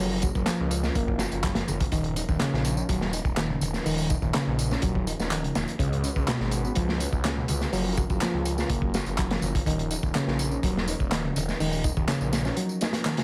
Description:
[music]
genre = breakbeat, breaks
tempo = 124 BPM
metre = 4/4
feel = straight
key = Eb minor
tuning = A4 = 440 Hz
[part]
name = mellow tonewheel organ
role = sustained chords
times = 0.0-13.2 s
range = F3 to Cb5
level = -39 LUFS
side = equal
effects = none
[part]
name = reed electric piano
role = riff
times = 0.0-13.2 s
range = Cb3 to Gb4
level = -32 LUFS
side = equal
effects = overdrive, dub echo
[part]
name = phased detuned saw bass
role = bass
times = 0.0-12.5 s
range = Eb1 to Db2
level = -33 LUFS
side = equal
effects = phaser, tube saturation
[part]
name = crunchy breakbeat drum kit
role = drums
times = 0.2-13.2 s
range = hi-hat, kick drum, snare drum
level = -31 LUFS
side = equal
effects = none
[part]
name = electronic tambourine and handclaps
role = drums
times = 0.2-13.2 s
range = none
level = -38 LUFS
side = equal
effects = overdrive
[part]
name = congas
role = percussion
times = 1.6-13.2 s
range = none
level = -38 LUFS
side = equal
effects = none
[sound]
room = small room ambience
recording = vinyl crackle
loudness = -27 LUFS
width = mono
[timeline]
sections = 0.0-13.2 A section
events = none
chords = 0.0 Gbmaj7; 1.9 Eb7(no3); 5.8 Db7sus4; 7.7 Gbmaj7; 9.7 Ebm7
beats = 0.47 0.95 1.44 | 1.92 2.41 2.89 3.38 | 3.86 4.34 4.83 5.31 | 5.79 6.28 6.76 7.25 | 7.73 8.21 8.70 9.18 | 9.66 10.15 10.63 11.12 | 11.60 12.08 12.57 13.05

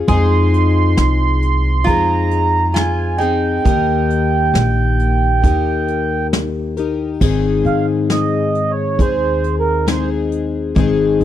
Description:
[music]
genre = acoustic folk duo or small band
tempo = 67 BPM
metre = 4/4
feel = straight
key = Ab major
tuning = A4 = 438 Hz
[part]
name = fingerpicked plugged-in twelve-string acoustic guitar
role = accompaniment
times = 0.0-11.2 s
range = Ab2 to Bb4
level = -18 LUFS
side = left 6 dB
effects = none
[part]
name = upright bass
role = bass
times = 0.0-11.2 s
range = Ab1 to Ab2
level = -18 LUFS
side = right 1 dB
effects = none
[part]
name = mellow accordion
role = melody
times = 0.1-10.1 s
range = Bb4 to C6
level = -19 LUFS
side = right 6 dB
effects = none
[part]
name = lap resonator guitar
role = second line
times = 0.1-6.3 s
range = Eb4 to Ab4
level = -25 LUFS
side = equal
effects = none
[part]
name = soft brush drum kit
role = drums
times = 0.1-11.2 s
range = crash cymbal, hi-hat, kick drum, snare drum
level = -18 LUFS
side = equal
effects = none
[sound]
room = small room reverb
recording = none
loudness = -14 LUFS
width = side -11 dB against mid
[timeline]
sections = 0.0-7.2 A section; 7.2-11.2 B section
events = accordion solo 7.2-11.2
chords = 0.1 Fm7; 3.7 Eb; 7.2 Ab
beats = | 0.09 0.98 1.87 2.76 | 3.65 4.54 5.43 6.32 | 7.21 8.10 8.99 9.88 | 10.77

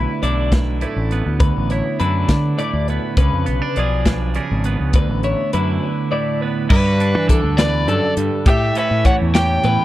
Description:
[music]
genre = math rock and midwest emo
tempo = 68 BPM (dotted quarters)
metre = 6/8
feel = straight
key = D major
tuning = A4 = 440 Hz
[part]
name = twelve-string electric guitar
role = accompaniment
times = 0.0-9.8 s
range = D2 to G#4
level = -22 LUFS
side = right 6 dB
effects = none
[part]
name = twelve-string electric guitar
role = arpeggios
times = 0.0-9.8 s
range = G4 to D5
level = -24 LUFS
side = left 5 dB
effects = spring reverb, tape echo
[part]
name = fuzz fingered electric bass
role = bass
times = 0.0-9.8 s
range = G#1 to E3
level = -20 LUFS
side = equal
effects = overdrive
[part]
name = crisp fusion drum kit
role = drums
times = 0.2-9.8 s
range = crash cymbal, hi-hat, kick drum, snare drum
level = -17 LUFS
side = equal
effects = none
[part]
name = overdriven electric guitar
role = melody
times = 6.7-9.8 s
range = B4 to G5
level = -20 LUFS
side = equal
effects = none
[sound]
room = little or no reverb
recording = dry, close 1970s-style studio recording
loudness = -15 LUFS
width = side -15 dB against mid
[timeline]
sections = 0.0-6.7 A section; 6.7-9.8 B section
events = break 5.8-6.7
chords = 0.0 Dsus2; 3.2 C#7b9; 4.9 D69; 6.7 Gmaj7; 8.5 A7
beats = 0.52 | 1.41 2.29 | 3.17 4.05 | 4.94 5.82 | 6.70 7.58 | 8.46 9.34

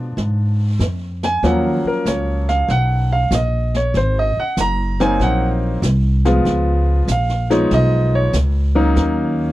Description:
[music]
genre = jazz piano trio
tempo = 96 BPM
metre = 4/4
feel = swing 67% on 8ths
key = Db mixolydian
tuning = A4 = 444 Hz
[part]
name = clear grand piano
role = melody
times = 0.0-9.5 s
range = F3 to Bb5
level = -18 LUFS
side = equal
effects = none
[part]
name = upright bass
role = bass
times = 0.0-9.5 s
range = Gb1 to Cb3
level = -17 LUFS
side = equal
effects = none
[part]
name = jazz brush drum kit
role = drums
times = 0.2-9.5 s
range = brushed snare drum, hi-hat, snare drum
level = -27 LUFS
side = equal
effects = none
[sound]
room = little or no reverb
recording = dry, close 1970s-style studio recording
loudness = -15 LUFS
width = side -16 dB against mid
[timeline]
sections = 0.0-9.5 A section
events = grand piano solo 0.0-9.5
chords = 0.0 Bb7b9 (rootless); 1.4 Ebm7; 3.9 Ab7; 6.5 Db7; 9.0 Ebm7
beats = 0.17 0.80 | 1.43 2.06 2.69 3.32 | 3.95 4.58 5.20 5.83 | 6.46 7.09 7.71 8.34 | 8.97

